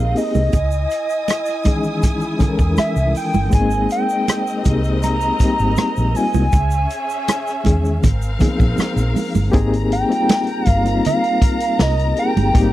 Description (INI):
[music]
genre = lush 1970s-style soul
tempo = 80 BPM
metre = 4/4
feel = straight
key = Ab major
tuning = A4 = 440 Hz
[part]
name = hollow square lead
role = melody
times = 0.0-12.7 s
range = Eb5 to Bb5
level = -21 LUFS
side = right 1 dB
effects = chorus
[part]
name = warm studio string section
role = second line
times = 0.0-12.7 s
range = C4 to Eb6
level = -28 LUFS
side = left 1 dB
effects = none
[part]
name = reed electric piano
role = accompaniment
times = 0.0-12.7 s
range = Eb3 to Bb4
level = -20 LUFS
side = left 3 dB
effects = fast tremolo
[part]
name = vintage muted fingered electric bass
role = bass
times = 0.0-12.7 s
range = G1 to Fb2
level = -19 LUFS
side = equal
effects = none
[part]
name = vintage drum kit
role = drums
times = 0.2-12.7 s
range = hi-hat, kick drum, rim click, snare drum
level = -17 LUFS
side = equal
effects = none
[part]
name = tube shaker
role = percussion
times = 0.2-9.5 s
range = none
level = -40 LUFS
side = right 6 dB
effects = none
[part]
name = congas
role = percussion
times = 0.3-12.7 s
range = none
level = -22 LUFS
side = right 6 dB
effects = none
[sound]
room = little or no reverb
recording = dry, close 1970s-style studio recording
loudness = -15 LUFS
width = side -15 dB against mid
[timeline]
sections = 0.0-9.5 A section; 9.5-12.7 B section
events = none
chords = 0.0 Abmaj9; 0.5 Dbmadd9; 3.5 Abmaj9; 6.5 Dbmadd9; 8.0 Ab69; 9.5 Abmaj9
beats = | 0.53 1.28 2.03 2.78 | 3.53 4.28 5.03 5.79 | 6.54 7.29 8.04 8.79 | 9.54 10.30 11.05 11.80 | 12.55